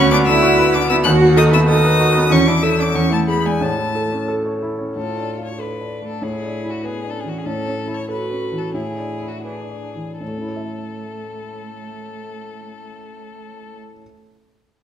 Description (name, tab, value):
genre	quick classical-period movement for piano trio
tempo	78-98 BPM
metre	2/4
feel	rubato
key	A major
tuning	A4 = 438 Hz
part	clear violin	melody	0.0-13.8 s	F#4 to F#6	-24 LUFS	left 6 dB	none
part	rich cello	second line	0.0-13.8 s	G#3 to F#4	-22 LUFS	right 5 dB	none
part	warm grand piano	accompaniment	0.0-14.1 s	D2 to E5	-18 LUFS	equal	none
room	wet recital hall reverb, RT60 1.2 s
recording	none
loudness	-15 LUFS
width	side -9 dB against mid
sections	0.0-5.0 A section; 5.0-10.2 B section; 10.2-13.3 C section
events	slowing down 6.8-10.2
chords	0.0 Bm/D; 1.1 B7/D#; 2.3 A/E; 3.0 E7; 3.6 A; 5.0 Dm/A; 6.2 E5/A; 7.5 A; 8.7 E7/A; 10.2 A